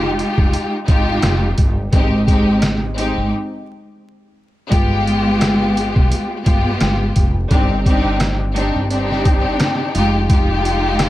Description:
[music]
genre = hip hop, boom-bap hip-hop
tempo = 86 BPM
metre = 4/4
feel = swing 58% on 16ths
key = C harmonic minor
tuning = A4 = 441 Hz
[part]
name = warm studio string section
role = accompaniment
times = 0.0-11.1 s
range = Ab3 to G4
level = -18 LUFS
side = left 1 dB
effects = cassette tape
[part]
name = upright bass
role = bass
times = 0.0-11.1 s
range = F1 to B1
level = -21 LUFS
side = equal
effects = none
[part]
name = trip hop sampler-style drum kit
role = drums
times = 0.2-11.1 s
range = hi-hat, kick drum, rim click, snare drum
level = -17 LUFS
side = equal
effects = none
[sound]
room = small room ambience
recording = vinyl crackle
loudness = -14 LUFS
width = side -15 dB against mid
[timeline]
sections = 0.0-11.1 A section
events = break 3.3-4.7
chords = 0.0 Fm9; 1.9 Abmaj7; 4.7 G7b9; 7.5 Cmadd9/G; 9.9 Fm9

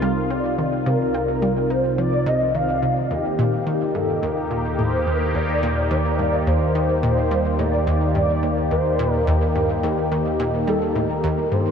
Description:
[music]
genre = ambient, sequencer-driven space music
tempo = 107 BPM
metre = 4/4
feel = straight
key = unclear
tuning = A4 = 440 Hz
[part]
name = expressive portamento lead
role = melody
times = 0.0-11.7 s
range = G4 to F5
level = -23 LUFS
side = equal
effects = ensemble chorus, tape echo
[part]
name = sweeping resonant pad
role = sustained chords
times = 0.0-11.7 s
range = C3 to G4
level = -23 LUFS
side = left 1 dB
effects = chorus
[part]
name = analog pluck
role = riff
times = 0.0-11.7 s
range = Eb2 to Eb4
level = -25 LUFS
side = equal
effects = chorus, tape echo
[part]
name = analog drone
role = bass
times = 0.0-11.7 s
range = C2 to Eb2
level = -26 LUFS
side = equal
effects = chorus
[sound]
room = wet huge ambient reverb, RT60 7.4 s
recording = in a vast, echoing space, cassette tape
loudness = -18 LUFS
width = side -7 dB against mid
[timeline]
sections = 0.0-11.7 A section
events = none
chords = 0.0 Cm; 3.1 Eb

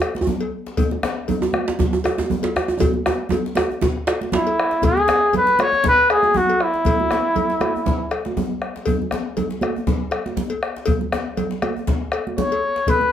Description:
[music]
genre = west african traditional, West African drum ensemble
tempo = 119 BPM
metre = 4/4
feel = swing 55% on 16ths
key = E major pentatonic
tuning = A4 = 439 Hz
[part]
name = bombo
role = percussion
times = 0.0-13.0 s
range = none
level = -24 LUFS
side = left 1 dB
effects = none
[part]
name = cowbell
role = percussion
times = 0.0-13.0 s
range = none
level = -27 LUFS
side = left 4 dB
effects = none
[part]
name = djembe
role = percussion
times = 0.0-13.0 s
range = none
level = -28 LUFS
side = left 5 dB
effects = none
[part]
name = congas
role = percussion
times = 0.1-13.1 s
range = none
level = -26 LUFS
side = right 7 dB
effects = none
[part]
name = djembe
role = percussion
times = 0.2-4.5 s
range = none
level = -22 LUFS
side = right 3 dB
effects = none
[part]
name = breathy trumpet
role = melody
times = 4.3-8.1, 12.4-13.1 s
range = E4 to C#5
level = -16 LUFS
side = left 1 dB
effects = none
[sound]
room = moderate studio reverb, RT60 0.5 s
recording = none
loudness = -18 LUFS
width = side -10 dB against mid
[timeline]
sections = 0.0-4.8 A section; 4.8-13.1 B section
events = drum fill 2.8-4.8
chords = none

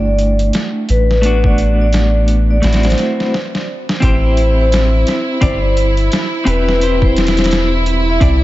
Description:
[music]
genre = trip hop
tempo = 86 BPM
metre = 4/4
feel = swing 59% on 16ths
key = A dorian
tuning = A4 = 440 Hz
[part]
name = vibraphone with medium hard mallets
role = melody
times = 0.0-8.4 s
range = B4 to E5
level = -19 LUFS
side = left 1 dB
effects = vintage 12-bit sampler grit, dub echo
[part]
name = clean electric guitar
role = accompaniment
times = 0.0-8.4 s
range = A3 to D5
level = -19 LUFS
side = equal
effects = tremolo, vintage 12-bit sampler grit, tape echo
[part]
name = soft dub sub bass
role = bass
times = 0.0-8.4 s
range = E1 to C2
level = -14 LUFS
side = equal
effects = none
[part]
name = boom bap sampler-style drum kit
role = drums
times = 0.2-8.4 s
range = hi-hat, kick drum, snare drum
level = -18 LUFS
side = equal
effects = overdrive
[part]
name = clear studio violin section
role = sustained chords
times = 4.0-8.4 s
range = E4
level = -20 LUFS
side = right 1 dB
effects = vintage 12-bit sampler grit
[sound]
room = moderate plate reverb, RT60 2.8 s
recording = dreamy mix soaked in reverb, nothing above 7.7 kHz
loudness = -11 LUFS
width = side -16 dB against mid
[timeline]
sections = 0.0-4.0 A section; 4.0-8.4 B section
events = drum fill 3.3-4.0; stop 3.3-4.0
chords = 0.0 G69; 1.2 Bm7/A; 2.6 Am6; 4.0 Am7

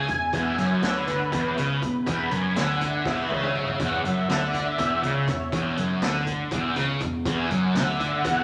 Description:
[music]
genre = psychedelic rock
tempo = 243 BPM (eighths)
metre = 7/8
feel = straight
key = E mixolydian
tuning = A4 = 440 Hz
[part]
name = soft string machine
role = sustained chords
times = 0.0-8.4 s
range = B4 to B5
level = -31 LUFS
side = equal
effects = ensemble chorus
[part]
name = thick fuzz guitar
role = riff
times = 0.0-8.4 s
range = E2 to D3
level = -27 LUFS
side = equal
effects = distortion, phaser
[part]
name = picked electric bass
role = bass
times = 0.0-8.4 s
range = E1 to D2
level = -37 LUFS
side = equal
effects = none
[part]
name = raw garage drum kit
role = drums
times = 0.1-8.4 s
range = hi-hat, kick drum, snare drum, toms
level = -34 LUFS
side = equal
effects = none
[sound]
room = wet large studio reverb, RT60 1.0 s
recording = none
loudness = -25 LUFS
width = mono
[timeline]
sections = 0.0-8.4 A section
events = string machine solo 0.0-8.4; drum fill 3.1-3.8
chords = 0.0 E

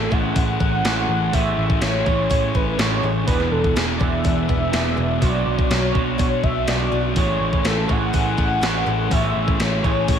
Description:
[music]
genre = rock, shoegaze and dream pop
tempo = 123 BPM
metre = 4/4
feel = straight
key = A major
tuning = A4 = 440 Hz
[part]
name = warm velvety synth lead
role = melody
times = 0.0-10.2 s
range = G#4 to F#5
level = -24 LUFS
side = equal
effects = chorus, slapback echo
[part]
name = electric guitar through a small old amp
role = riff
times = 0.0-10.2 s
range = B2 to D5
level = -25 LUFS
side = right 10 dB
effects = reverse reverb
[part]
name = thick fuzz guitar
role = riff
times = 0.0-10.2 s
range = E2 to B3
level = -26 LUFS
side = left 10 dB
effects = distortion, analog chorus
[part]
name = vintage muted picked electric bass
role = bass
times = 0.0-10.2 s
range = E1 to B2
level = -24 LUFS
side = equal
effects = none
[part]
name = picked twelve-string acoustic guitar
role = arpeggios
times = 0.1-10.2 s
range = E3 to G#4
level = -33 LUFS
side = left 2 dB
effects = ensemble chorus, slapback echo
[part]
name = gated 80s digital drum machine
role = drums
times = 0.1-10.2 s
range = hi-hat, kick drum, snare drum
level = -22 LUFS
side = equal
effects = gated reverb, gated reverb snare
[sound]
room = light reverb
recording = none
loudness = -17 LUFS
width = side -8 dB against mid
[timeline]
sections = 0.0-10.2 A section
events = none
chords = 0.0 Amaj7; 3.3 E7; 5.2 Bmadd9; 7.2 Amaj7

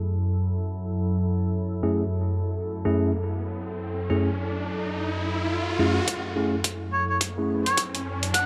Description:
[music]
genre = glitch hop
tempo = 106 BPM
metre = 4/4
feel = swing 60% on 16ths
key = F# minor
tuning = A4 = 438 Hz
[part]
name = warbly tape-like pad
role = sustained chords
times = 0.0-8.5 s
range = F#2 to A4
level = -30 LUFS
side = equal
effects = chorus, built-in reverb, phaser, vintage 12-bit sampler grit, sidechain pumping
[part]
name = riser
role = sound effects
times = 3.1-8.5 s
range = none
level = -34 LUFS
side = equal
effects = none
[part]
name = bell-like tine electric piano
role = stabs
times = 1.8-7.6 s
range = F#2 to G#4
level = -28 LUFS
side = equal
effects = sidechain pumping, low-pass filter, tape echo
[part]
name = electronic hi-hat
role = drums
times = 6.1-8.5 s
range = none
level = -28 LUFS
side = equal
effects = high-pass filter on hats, low-pass filter on hats, high-pass filter on snare, low-pass filter on snare, high-pass filter on room, low-pass filter on room
[part]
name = electronic kick drum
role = drums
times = 6.1-8.5 s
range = none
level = -38 LUFS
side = equal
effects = high-pass filter on kick, high-pass filter on room
[part]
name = mellow harmonica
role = melody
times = 6.9-8.5 s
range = C#5 to F#5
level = -28 LUFS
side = equal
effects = tape echo
[sound]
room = moderate lush hall reverb, RT60 2.1 s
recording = low-pass filter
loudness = -26 LUFS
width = mono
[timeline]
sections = 0.0-6.1 A section; 6.1-8.5 B section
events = filter sweep 0.0-6.1; riser 3.1-6.1, 6.1-8.5; build-up 6.1-8.5; filter sweep on tine electric piano 6.1-8.5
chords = 0.0 F#m7

